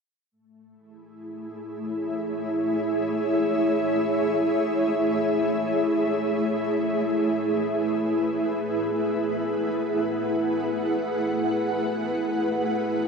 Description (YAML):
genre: ambient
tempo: free time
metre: none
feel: none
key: A major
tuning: A4 = 440 Hz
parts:
  - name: ethereal airy pad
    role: solo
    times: 1.2-13.1 s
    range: A3 to F#5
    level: -23 LUFS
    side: equal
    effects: ensemble chorus, built-in reverb, tremolo, ping-pong delay
room: wet cathedral reverb, RT60 6.6 s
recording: in a vast, echoing space, nothing above 10.6 kHz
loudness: -22 LUFS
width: side -5 dB against mid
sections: 0.3-13.1 A section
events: none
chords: 0.3 Amaj7